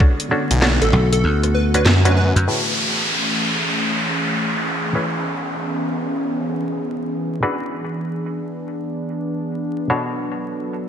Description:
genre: glitch hop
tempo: 97 BPM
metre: 4/4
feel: swing 63% on 16ths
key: unclear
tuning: A4 = 440 Hz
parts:
  - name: warbly tape-like pad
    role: sustained chords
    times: 0.0-10.9 s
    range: D3 to A4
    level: -24 LUFS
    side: equal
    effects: chorus, built-in reverb, sidechain pumping
  - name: muted clav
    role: stabs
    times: 0.0-10.9 s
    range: A2 to C#5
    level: -24 LUFS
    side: left 1 dB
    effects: overdrive, sidechain pumping, low-pass filter, ping-pong delay
  - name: drum and bass drum kit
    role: drums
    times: 0.2-2.5 s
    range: hi-hat, rim click, snare drum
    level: -22 LUFS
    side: equal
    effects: gated reverb
  - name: phased detuned saw bass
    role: bass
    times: 0.5-2.3 s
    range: A1 to F#2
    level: -16 LUFS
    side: equal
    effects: phaser, tube saturation
  - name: plucky unison lead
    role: melody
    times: 0.8-2.3 s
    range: A4 to B4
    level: -25 LUFS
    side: equal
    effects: analog chorus, cassette tape, ping-pong delay
  - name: dry thumbed slap bass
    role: bass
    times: 0.9-2.5 s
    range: B1 to F#2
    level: -17 LUFS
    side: equal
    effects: none
  - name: downlifter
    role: sound effects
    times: 2.5-7.4 s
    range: none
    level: -22 LUFS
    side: equal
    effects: none
room: moderate plate reverb, RT60 3.1 s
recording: bright 1980s-style digital production, vinyl crackle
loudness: -18 LUFS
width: side -8 dB against mid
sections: 0.0-2.5 A section; 2.5-10.9 B section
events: filter sweep on clav 2.5-10.9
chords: 0.0 Bm7; 2.5 Amaj7; 5.0 C#m7; 7.4 E7; 9.9 Bm7

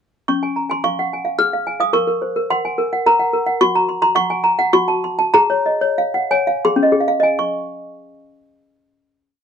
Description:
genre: classical, lullaby for toy piano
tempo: 80-110 BPM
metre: 3/4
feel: straight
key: Db major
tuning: A4 = 440 Hz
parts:
  - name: toy piano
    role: solo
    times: 0.3-9.4 s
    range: Db4 to F6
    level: -15 LUFS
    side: equal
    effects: none
room: light reverb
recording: dry, close 1970s-style studio recording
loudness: -15 LUFS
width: side -7 dB against mid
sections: 0.3-7.4 A section; 7.4-9.4 final chord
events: slowing down 2.8-7.4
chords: 0.3 Db; 1.9 Gb/Bb; 3.6 Gb; 4.7 Gbm; 5.3 Db/Ab; 6.7 Ab; 7.4 Db

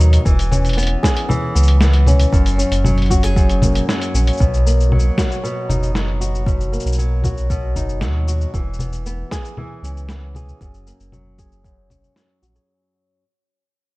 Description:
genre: folktronica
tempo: 116 BPM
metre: 4/4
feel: straight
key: B major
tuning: A4 = 440 Hz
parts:
  - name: flamenco guitar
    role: arpeggios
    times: 0.0-13.2 s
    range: F#2 to G#4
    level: -22 LUFS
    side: equal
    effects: low-pass filter, tape echo
  - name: warm sub bass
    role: bass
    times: 0.0-12.6 s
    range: E1 to D#2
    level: -16 LUFS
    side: equal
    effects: tube saturation
  - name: lo-fi sampler-style drum kit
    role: drums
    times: 0.0-12.7 s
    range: cabasa, congas, hi-hat, snare drum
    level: -23 LUFS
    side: left 1 dB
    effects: none
  - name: electronic kick drum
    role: drums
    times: 0.3-12.0 s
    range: none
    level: -19 LUFS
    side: equal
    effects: none
room: little or no reverb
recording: dark, warm production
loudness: -14 LUFS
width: side -21 dB against mid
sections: 0.0-4.4 A section; 4.4-12.7 B section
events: fade-out 4.4-12.7; filter sweep on nylon-string guitar 4.4-12.7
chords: 0.3 E6; 2.3 F#add9; 4.4 Bmaj7; 8.5 E6; 10.6 F#add9

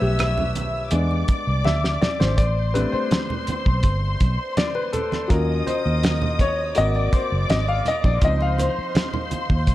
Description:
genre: lush 1970s-style soul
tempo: 82 BPM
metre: 4/4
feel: straight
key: unclear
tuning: A4 = 441 Hz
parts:
  - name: dark studio string section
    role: second line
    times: 0.0-9.7 s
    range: C5 to E6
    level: -28 LUFS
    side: equal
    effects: none
  - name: clear concert grand piano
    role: accompaniment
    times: 0.0-9.7 s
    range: F3 to F5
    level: -25 LUFS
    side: left 2 dB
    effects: none
  - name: vintage muted fingered electric bass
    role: bass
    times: 0.0-9.7 s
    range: Gb1 to E2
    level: -22 LUFS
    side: equal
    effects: none
  - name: cloth-damped thuddy drum kit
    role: drums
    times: 0.2-9.7 s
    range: hi-hat, kick drum, rim click, snare drum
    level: -21 LUFS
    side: equal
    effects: none
  - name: congas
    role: percussion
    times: 0.2-9.5 s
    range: none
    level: -32 LUFS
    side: right 4 dB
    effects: none
room: light reverb, small room reverb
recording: dark, warm production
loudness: -19 LUFS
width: side -15 dB against mid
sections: 0.0-9.7 A section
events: grand piano solo 0.0-9.7; drum fill 1.7-2.4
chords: 0.0 Bm7b5; 0.9 E7; 2.4 Am11; 5.3 Ebm7; 6.8 Ab7; 8.2 Dbmaj9

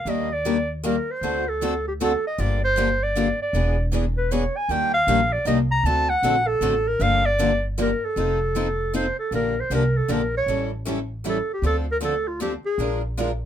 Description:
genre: acoustic string swing (jazz manouche)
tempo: 155 BPM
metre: 3/4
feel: swing 63% on 8ths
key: Bb major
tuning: A4 = 438 Hz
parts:
  - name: warm clarinet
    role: melody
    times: 0.0-13.0 s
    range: F4 to Bb5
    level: -23 LUFS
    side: right 1 dB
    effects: none
  - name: picked steel-string acoustic guitar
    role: accompaniment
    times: 0.1-13.3 s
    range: D3 to Bb4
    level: -27 LUFS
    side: left 6 dB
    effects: none
  - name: picked steel-string acoustic guitar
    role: accompaniment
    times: 0.1-13.3 s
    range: D3 to B4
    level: -31 LUFS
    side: right 7 dB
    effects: none
  - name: upright bass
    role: bass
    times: 0.1-13.5 s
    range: E1 to Eb2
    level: -26 LUFS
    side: equal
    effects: none
room: light reverb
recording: minimal, uncompressed stereo recording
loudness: -20 LUFS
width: side -10 dB against mid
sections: 0.1-9.3 A section; 9.3-13.5 B section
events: none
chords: 0.1 Ebmaj7; 1.2 D7; 2.4 Gm7; 3.5 E7; 4.7 Ebmaj7; 5.8 D7; 7.0 Gm7; 8.2 F7; 9.3 Bb6; 10.5 A7; 11.6 Dm7; 12.8 Bb7

